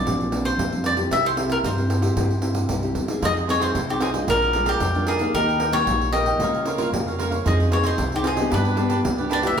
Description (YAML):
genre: samba and choro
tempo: 114 BPM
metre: 4/4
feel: straight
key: F minor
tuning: A4 = 440 Hz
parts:
  - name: cavaquinho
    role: melody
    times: 0.0-9.6 s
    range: G4 to E5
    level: -24 LUFS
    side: left 1 dB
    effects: none
  - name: nylon-string guitar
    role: accompaniment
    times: 0.0-9.6 s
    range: F2 to Ab4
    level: -26 LUFS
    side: left 1 dB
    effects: none
  - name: upright bass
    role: bass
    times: 0.1-9.6 s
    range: Bb1 to G2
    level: -25 LUFS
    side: equal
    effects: none
  - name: pandeiro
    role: percussion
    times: 0.1-9.6 s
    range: none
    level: -28 LUFS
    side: right 2 dB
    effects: none
  - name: cavaquinho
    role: accompaniment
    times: 3.2-9.6 s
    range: D4 to G5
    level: -27 LUFS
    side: right 4 dB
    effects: none
room: wet large studio reverb, RT60 1.3 s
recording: band playing live in one room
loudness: -19 LUFS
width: side -7 dB against mid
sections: 0.0-9.6 A section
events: none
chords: 0.1 Bbadd9; 1.1 C; 3.2 Fm7; 4.3 Bb7; 5.3 Eb; 6.4 Bbm/Db; 7.5 Fm7; 8.5 G